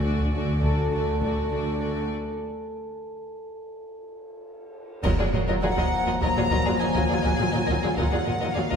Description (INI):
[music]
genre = cinematic, suspense film score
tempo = 102 BPM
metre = 5/4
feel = straight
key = Eb harmonic minor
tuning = A4 = 440 Hz
[part]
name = warm chamber violin section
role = melody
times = 0.0-8.8 s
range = D5 to Bb5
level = -30 LUFS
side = left 2 dB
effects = none
[part]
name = warm chamber violin section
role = second line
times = 0.0-8.8 s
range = F#4 to Eb5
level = -32 LUFS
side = left 2 dB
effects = none
[part]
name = warm chamber viola section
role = accompaniment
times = 0.0-8.8 s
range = Gb3 to F4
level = -30 LUFS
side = right 1 dB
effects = none
[part]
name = dark chamber cello section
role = bass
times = 0.0-8.8 s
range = Eb2 to D3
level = -31 LUFS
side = right 2 dB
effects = none
[part]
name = warm symphonic double bass section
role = bass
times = 0.0-8.6 s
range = D2 to Eb2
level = -31 LUFS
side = right 1 dB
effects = none
[part]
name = vibraphone with medium hard mallets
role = texture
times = 0.0-8.8 s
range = A4 to Bb5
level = -34 LUFS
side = right 1 dB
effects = none
[part]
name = solo taiko drums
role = drums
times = 0.2-8.8 s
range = none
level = -29 LUFS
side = equal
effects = none
[part]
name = cymbal swell, clash cymbals and concert bass drum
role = percussion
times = 2.1-6.2 s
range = none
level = -35 LUFS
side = equal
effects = none
[part]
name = warm French horn section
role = sustained chords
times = 5.0-8.8 s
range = F3 to Bb3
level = -30 LUFS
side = left 4 dB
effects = none
[sound]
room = wet scoring stage reverb, RT60 1.7 s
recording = heard from further back in the room, lossy compression artefacts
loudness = -22 LUFS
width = side -7 dB against mid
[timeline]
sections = 0.0-5.0 A section; 5.0-8.8 B section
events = break 2.1-5.0; drum fill 4.3-5.0; band accent 5.0-5.6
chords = 0.0 D; 5.0 Ebmadd9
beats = 0.33 0.92 1.51 | 2.10 2.68 3.27 3.86 4.45 | 5.04 5.63 6.21 6.80 7.39 | 7.98 8.57